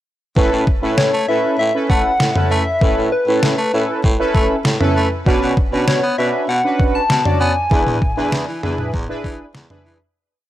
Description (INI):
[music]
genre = synth-pop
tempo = 98 BPM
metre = 4/4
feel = straight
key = A major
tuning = A4 = 440 Hz
[part]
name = analog synth brass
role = accompaniment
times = 0.4-10.0 s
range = C#4 to D5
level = -20 LUFS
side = right 1 dB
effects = chorus
[part]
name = raspy baritone saxophone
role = bass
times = 0.4-10.0 s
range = E2 to B3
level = -21 LUFS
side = equal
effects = none
[part]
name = detuned 8-bit digital drum machine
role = drums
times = 0.4-9.8 s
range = kick drum, snare drum, toms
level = -17 LUFS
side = equal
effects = overdrive
[part]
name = soft struck synth lead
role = melody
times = 1.0-9.6 s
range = B4 to A5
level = -20 LUFS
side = left 2 dB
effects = chorus, tape echo
[sound]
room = light reverb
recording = dry, gritty hardware recording, cassette tape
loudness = -14 LUFS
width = side -13 dB against mid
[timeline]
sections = 0.4-10.2 verse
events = fade-out 7.7-10.2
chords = 0.4 Aadd9; 5.3 Bmadd9; 7.7 E7